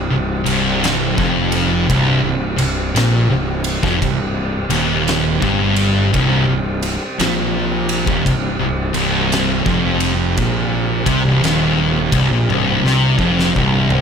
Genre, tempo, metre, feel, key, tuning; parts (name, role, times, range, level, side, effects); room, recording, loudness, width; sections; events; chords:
stoner and doom metal; 57 BPM; 4/4; swing 65% on 8ths; C minor; A4 = 440 Hz
tonewheel organ; sustained chords; 0.0-14.0 s; C3 to C4; -28 LUFS; equal; slow rotary speaker, overdrive
thick fuzz guitar; riff; 0.0-14.0 s; C2 to C3; -19 LUFS; left 9 dB; distortion
thick fuzz guitar; riff; 0.0-14.0 s; C2 to C3; -19 LUFS; right 8 dB; distortion
fuzz fingered electric bass; bass; 0.0-14.0 s; C1 to C2; -23 LUFS; equal; overdrive
oversized low-tuned drum kit; drums; 0.5-14.0 s; kick drum, ride cymbal, snare drum, toms; -22 LUFS; equal
light reverb; -14 LUFS; side -6 dB against mid
0.0-14.0 A section
drum fill 12.5-14.0
0.0 Cm